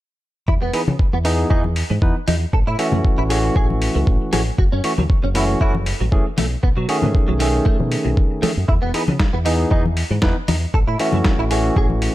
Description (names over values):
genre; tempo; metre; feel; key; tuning
nu-disco, nu disco; 117 BPM; 4/4; swing 54% on 16ths; E major; A4 = 440 Hz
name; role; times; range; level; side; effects
direct-recorded clean electric guitar; riff; 0.5-11.9 s; B2 to E5; -26 LUFS; right 2 dB; ensemble chorus, tape echo
fingered electric bass with an envelope filter; bass; 0.5-12.1 s; E1 to C#3; -21 LUFS; equal; none
electronic kick drum; drums; 0.5-11.9 s; none; -18 LUFS; equal; overdrive
barky tine electric piano; accompaniment; 0.7-12.1 s; D#3 to B4; -22 LUFS; equal; sidechain pumping, tape echo
dusty soul sampler-style drum kit; drums; 0.7-12.1 s; hi-hat, snare drum; -26 LUFS; left 1 dB; overdrive
congas; percussion; 0.9-12.0 s; none; -24 LUFS; left 4 dB; none
room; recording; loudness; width
digital ambience; none; -16 LUFS; side -15 dB against mid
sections
0.5-12.1 A section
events
none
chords
0.5 Emaj7; 2.5 A6; 4.6 F#m7; 6.4 B13; 8.7 Emaj7; 10.7 A6